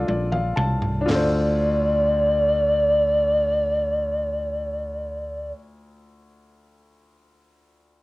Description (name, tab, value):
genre	slow gospel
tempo	38 BPM (dotted quarters)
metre	6/8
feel	straight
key	D minor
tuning	A4 = 441 Hz
part	polished pan flute	melody	0.0-5.5 s	D5 to F5	-21 LUFS	equal	cassette tape
part	clear grand piano	accompaniment	0.0-8.0 s	D2 to A5	-28 LUFS	left 2 dB	cassette tape
part	fingered electric bass	bass	0.0-5.5 s	Bb1 to D2	-27 LUFS	equal	none
part	crisp fusion drum kit	drums	0.1-1.3 s	hi-hat, snare drum, toms	-27 LUFS	equal	cassette tape
room	moderate studio reverb, RT60 0.6 s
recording	home recording on cassette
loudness	-19 LUFS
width	side -20 dB against mid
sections	0.0-1.1 A section; 1.1-7.5 B section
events	drum fill 0.0-1.1; grand piano fill 0.0-1.1; slowing down 0.0-1.1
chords	0.0 Dm7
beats	| 1.08 2.68 | 4.28 5.88